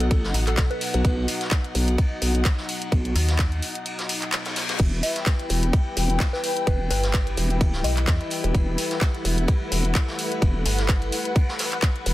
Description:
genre	bass house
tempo	128 BPM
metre	4/4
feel	swing 55% on 16ths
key	E harmonic minor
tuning	A4 = 440 Hz
part	soft synth bell	melody	0.0-1.4, 5.0-8.5 s	A4 to E5	-32 LUFS	right 1 dB	chorus, phaser, digital delay
part	dark analog pad	sustained chords	0.0-12.1 s	B3 to D#5	-34 LUFS	right 1 dB	chorus, sidechain pumping
part	vowel-sweep wobble bass	bass	0.0-12.1 s	E1 to B1	-23 LUFS	equal	chorus, overdrive, sidechain pumping
part	garage drum kit	drums	0.0-12.1 s	crash cymbal, handclaps, hi-hat	-28 LUFS	equal	none
part	dark studio string section	texture	0.0-12.1 s	D#4 to G5	-32 LUFS	left 3 dB	sidechain pumping
part	electronic kick drum	drums	0.1-11.9 s	none	-21 LUFS	equal	none
part	vintage brush drum kit	drums	0.1-12.1 s	ride cymbal, snare drum	-34 LUFS	equal	high-pass filter on cymbals, soft clipping on snare, high-pass filter on snare, high-pass filter on room
part	metallic FM bass	bass	0.3-3.6, 6.9-11.1 s	G1 to E2	-23 LUFS	equal	sidechain pumping
part	reverse cymbal	sound effects	4.1-4.8 s	none	-33 LUFS	left 7 dB	none
room	little or no reverb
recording	dense, heavily limited modern master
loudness	-21 LUFS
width	side -16 dB against mid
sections	0.0-12.1 A section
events	break 3.9-4.8; reverse cymbal 4.1-4.8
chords	0.0 B; 4.8 Em

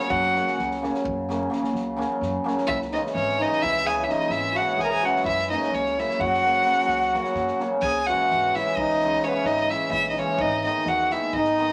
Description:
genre	balkan folk, Balkan wedding band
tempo	257 BPM (eighths)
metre	11/8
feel	straight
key	F# mixolydian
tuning	A4 = 440 Hz
part	rich violin	melody	0.0-11.7 s	B4 to A#5	-26 LUFS	equal	none
part	mellow accordion	second line	0.0-11.7 s	B3 to A#4	-29 LUFS	equal	none
part	cimbalom	accompaniment	0.0-11.7 s	C#3 to D#4	-29 LUFS	equal	none
part	upright bass	bass	0.1-11.7 s	G#1 to F#2	-39 LUFS	equal	none
part	natural country drum kit	percussion	0.1-11.7 s	kick drum, snare drum	-44 LUFS	equal	none
room	moderate studio reverb, RT60 0.6 s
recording	vinyl crackle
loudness	-24 LUFS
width	mono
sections	0.0-7.8 A section; 7.8-11.7 B section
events	none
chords	0.0 F#; 2.7 C#m; 5.3 F#; 7.8 C#m; 10.4 G#m

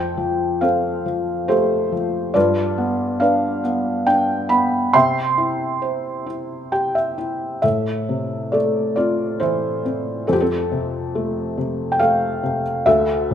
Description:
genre	classical, lyrical solo piano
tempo	69 BPM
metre	3/4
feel	rubato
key	C major, A minor from 7.6 s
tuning	A4 = 439 Hz
part	felt-muted upright piano	solo	0.0-13.3 s	D2 to C6	-18 LUFS	equal	none
room	moderate recital hall reverb, RT60 1.8 s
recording	minimal, uncompressed stereo recording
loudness	-18 LUFS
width	side -9 dB against mid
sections	0.0-7.6 A section; 7.6-13.3 B section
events	felt piano fill 6.3-7.6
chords	0.0 Fadd9; 2.4 G7; 4.9 C; 7.6 Am; 10.3 F

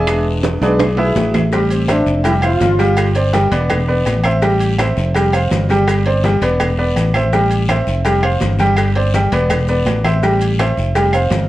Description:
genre	latin, salsa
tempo	166 BPM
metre	4/4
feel	straight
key	A minor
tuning	A4 = 444 Hz
part	bright concert grand piano	accompaniment	0.0-11.4 s	G3 to G#5	-16 LUFS	right 1 dB	none
part	fingered electric bass	bass	0.0-11.5 s	E1 to B1	-17 LUFS	equal	none
part	bongos and cowbell	percussion	0.1-11.5 s	none	-27 LUFS	left 3 dB	none
part	claves	percussion	0.1-11.3 s	none	-27 LUFS	equal	none
part	congas	percussion	0.1-11.5 s	none	-25 LUFS	left 1 dB	none
part	guiro	percussion	0.1-11.5 s	none	-32 LUFS	left 4 dB	none
part	maracas	percussion	0.1-11.5 s	none	-40 LUFS	right 4 dB	none
part	timbales and agogo bells	percussion	0.1-11.5 s	none	-24 LUFS	right 3 dB	none
part	warm trombone section	second line	1.5-3.1 s	C4 to F4	-18 LUFS	equal	none
room	moderate studio reverb, RT60 0.7 s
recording	worn, warbling old tape, cassette tape, warbly pitch drift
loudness	-12 LUFS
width	side -15 dB against mid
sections	0.0-1.5 A section; 1.5-11.5 B section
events	grand piano solo 0.0-1.5; drum fill 0.4-1.5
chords	0.1 E7; 1.5 Am7; 2.3 Fsus2; 3.0 Gsus4; 3.7 E5; 4.4 Am7; 5.1 Fsus2; 5.9 Gsus4; 6.6 E5; 7.3 Am7; 8.0 Fsus2; 8.8 Gsus4; 9.5 E5; 10.2 Am7; 10.9 Fsus2

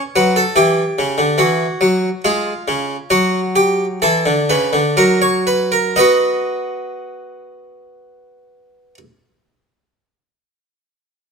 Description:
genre	classical, baroque-style two-part invention for harpsichord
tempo	58-74 BPM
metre	3/4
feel	straight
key	unclear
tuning	A4 = 440 Hz
part	harpsichord	solo	0.2-9.0 s	C#3 to D#5	-14 LUFS	equal	none
room	moderate stone room reverb, RT60 1.4 s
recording	minimal, uncompressed stereo recording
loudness	-13 LUFS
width	side -5 dB against mid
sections	0.0-6.0 A section; 6.0-9.1 B section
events	slowing down 0.0-6.0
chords	0.0 F#madd11; 0.6 C#dim; 2.2 C#; 3.1 Bm/F#; 5.0 F#; 6.0 B

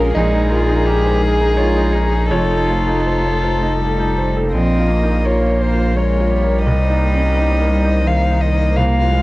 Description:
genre	neoclassical piano and strings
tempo	80-87 BPM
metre	3/4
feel	rubato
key	Bb dorian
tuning	A4 = 440 Hz
part	warm violin	melody	0.0-9.2 s	Ab4 to F5	-20 LUFS	left 2 dB	cassette tape
part	rich cello	second line	0.0-9.2 s	Eb3 to Ab4	-23 LUFS	right 3 dB	none
part	bright grand piano	accompaniment	0.0-9.2 s	Bb1 to F5	-21 LUFS	right 1 dB	none
part	warm chamber string section	sustained chords	0.0-9.2 s	F3 to C5	-25 LUFS	left 1 dB	none
part	marimba with medium hard mallets	arpeggios	0.0-4.5 s	Eb4 to Eb5	-28 LUFS	left 2 dB	none
part	saturated sub bass	bass	0.0-9.2 s	F1 to C2	-17 LUFS	equal	none
room	little or no reverb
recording	home recording on cassette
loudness	-14 LUFS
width	side -19 dB against mid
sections	0.0-4.5 A section; 4.5-9.2 B section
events	none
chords	0.2 Ebsus4/Bb; 2.3 F7; 4.5 Bbm; 6.7 Cm7

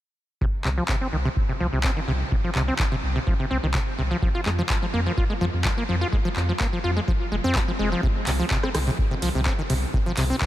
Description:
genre	acid house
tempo	126 BPM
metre	4/4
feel	straight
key	C minor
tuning	A4 = 441 Hz
part	acid bass, saw	riff	0.4-10.5 s	C3 to F4	-26 LUFS	equal	sidechain pumping, tape echo
part	electronic kick drum	drums	0.4-10.5 s	none	-25 LUFS	equal	none
part	warm sub bass	bass	0.6-10.3 s	F1 to F2	-25 LUFS	equal	tube saturation, sidechain pumping
part	punchy analog drum machine	drums	0.6-10.5 s	handclaps, hi-hat, rim click	-30 LUFS	equal	none
room	moderate huge ambient reverb, RT60 7.8 s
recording	dreamy mix soaked in reverb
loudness	-21 LUFS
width	side -14 dB against mid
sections	0.4-10.5 A section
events	none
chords	none

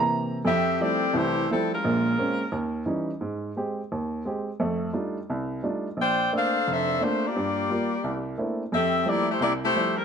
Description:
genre	jazz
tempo	174 BPM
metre	4/4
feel	swing 64% on 8ths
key	F major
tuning	A4 = 440 Hz
part	warm upright piano	accompaniment	0.0-10.0 s	F1 to Bb5	-27 LUFS	right 2 dB	none
part	warm saxophone section	melody	0.4-2.7, 6.0-10.0 s	G3 to G5	-24 LUFS	left 2 dB	plate reverb
room	moderate large studio reverb, RT60 1.1 s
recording	dark, warm production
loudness	-24 LUFS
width	side -7 dB against mid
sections	0.5-10.0 A section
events	none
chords	0.5 Fmaj9; 1.8 Bbm9; 2.5 Eb7b9; 3.2 Abmaj7; 4.6 F13; 6.0 Bbmaj9; 7.3 Gm7; 8.0 C13; 8.7 Fmaj9

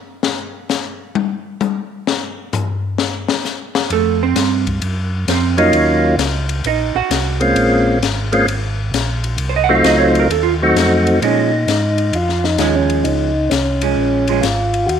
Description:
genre	soul jazz organ trio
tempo	131 BPM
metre	4/4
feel	swing 66% on 8ths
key	Bb minor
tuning	A4 = 440 Hz
part	open jazz drum kit	drums	0.2-15.0 s	hi-hat, kick drum, ride cymbal, snare drum, toms	-21 LUFS	left 7 dB	none
part	vintage hollow-body jazz guitar	accompaniment	3.9-14.4 s	F3 to Gb5	-18 LUFS	right 13 dB	none
part	mellow tonewheel organ	bass	3.9-15.0 s	Ab1 to Bb2	-20 LUFS	right 1 dB	chorus vibrato, slow rotary speaker
part	percussive tonewheel organ	melody	5.6-15.0 s	Gb3 to Gb4	-15 LUFS	left 1 dB	slow rotary speaker, slapback echo
room	light reverb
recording	1960s-style stereo with parts hard left and right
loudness	-14 LUFS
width	side -8 dB against mid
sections	0.0-11.2 A section; 11.2-15.0 B section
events	hollow-body jazz guitar solo 0.0-11.2; drum solo 0.0-3.9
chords	0.2 N.C.; 3.9 F7b9; 5.7 Ebm7; 7.6 Bbm7; 9.4 F7b9; 11.2 Bbm7

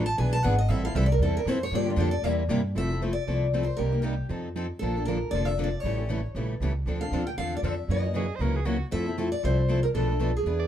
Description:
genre	acoustic string swing (jazz manouche)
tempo	234 BPM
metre	4/4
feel	swing 56% on 8ths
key	F major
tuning	A4 = 438 Hz
part	picked steel-string acoustic guitar	melody	0.0-10.7 s	F4 to A5	-30 LUFS	left 1 dB	none
part	picked plugged-in steel-string acoustic guitar	accompaniment	0.0-10.6 s	B2 to B4	-34 LUFS	right 6 dB	none
part	picked steel-string acoustic guitar	accompaniment	0.0-10.6 s	B2 to A4	-32 LUFS	left 3 dB	none
part	upright bass	bass	0.0-10.7 s	F1 to G2	-27 LUFS	equal	none
part	edgy soprano saxophone	second line	8.2-10.7 s	Gb4 to D5	-36 LUFS	right 6 dB	none
room	light reverb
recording	dark, warm production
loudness	-24 LUFS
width	side -10 dB against mid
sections	0.0-2.8 A section; 2.8-10.7 B section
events	steel-string acoustic guitar solo 0.0-2.8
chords	0.2 E7; 0.7 Am7; 1.7 Gm7; 2.2 C7; 2.8 Fmaj7; 3.8 Cm7; 4.3 F7; 4.8 Bbmaj7; 5.8 A7; 6.9 Dm7; 7.9 Gb6; 8.9 Fmaj7; 9.9 Bm7b5

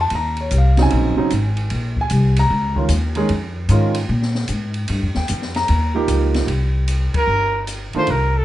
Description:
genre	modal jazz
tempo	151 BPM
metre	4/4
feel	swing 66% on 8ths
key	unclear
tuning	A4 = 440 Hz
part	warm concert grand piano	accompaniment	0.0-8.1 s	Db3 to Bb5	-21 LUFS	right 2 dB	none
part	upright bass	bass	0.0-8.4 s	G1 to Bb2	-18 LUFS	equal	none
part	open jazz drum kit	drums	0.1-8.2 s	hi-hat, kick drum, ride cymbal, snare drum	-28 LUFS	left 1 dB	none
part	warm trumpet	melody	7.2-8.4 s	A4 to C5	-19 LUFS	right 1 dB	none
room	light reverb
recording	nothing above 10.9 kHz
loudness	-16 LUFS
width	side -14 dB against mid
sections	0.0-6.5 A section; 6.5-8.4 B section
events	band accent 7.1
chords	0.1 Ebm7; 3.3 Db; 4.9 Eb9; 6.5 C7(no3)

